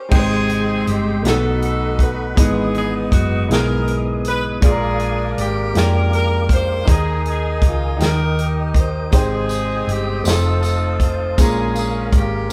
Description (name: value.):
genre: slow gospel.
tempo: 53 BPM (dotted quarters).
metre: 6/8.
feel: straight.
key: Ab major.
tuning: A4 = 440 Hz.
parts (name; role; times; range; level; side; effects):
edgy saxophone section; melody; 0.0-12.5 s; B3 to C5; -26 LUFS; equal; none.
clear grand piano; accompaniment; 0.1-12.5 s; G#2 to G5; -25 LUFS; equal; none.
percussive tonewheel organ; sustained chords; 0.1-12.5 s; Ab3 to D#6; -28 LUFS; equal; slow rotary speaker, chorus vibrato.
hollow-body short-scale fingered electric bass; bass; 0.1-12.5 s; F1 to F2; -23 LUFS; equal; none.
natural country drum kit; drums; 0.1-12.3 s; crash cymbal, hi-hat, kick drum, snare drum; -20 LUFS; equal; none.
tambourine; percussion; 9.1-12.5 s; none; -34 LUFS; equal; none.
room: moderate large studio reverb, RT60 1.3 s.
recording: band playing live in one room.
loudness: -18 LUFS.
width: mono.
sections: 0.1-12.5 A section.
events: none.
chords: 0.1 Abmaj7; 1.2 B7; 2.4 Emaj7; 4.6 Bb7; 6.9 Ebsus4; 8.0 Eb; 9.1 Abmaj7; 10.3 F7; 11.4 Bbm7.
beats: | 0.11 1.24 | 2.37 3.49 | 4.62 5.75 | 6.87 8.00 | 9.13 10.25 | 11.38 12.51.